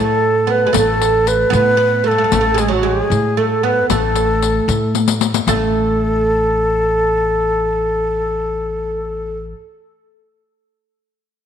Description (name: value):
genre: Persian modal ensemble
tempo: 76 BPM (dotted quarters)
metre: 6/8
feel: straight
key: unclear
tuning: A4 = 440 Hz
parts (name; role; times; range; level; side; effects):
- breathy ney; melody; 0.0-9.4 s; F#4 to B4; -16 LUFS; equal; none
- oud; second line; 0.0-9.5 s; F#3 to B3; -20 LUFS; right 6 dB; none
- upright bass; bass; 0.0-9.5 s; A1 to A2; -21 LUFS; left 2 dB; none
- riq; percussion; 0.7-5.7 s; none; -21 LUFS; left 13 dB; none
room: moderate echo chamber reverb, RT60 2.0 s, studio reverb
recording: 1960s-style stereo with parts hard left and right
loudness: -14 LUFS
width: side -8 dB against mid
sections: 0.0-5.5 A section; 5.5-8.6 B section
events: drum fill 4.9-5.5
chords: none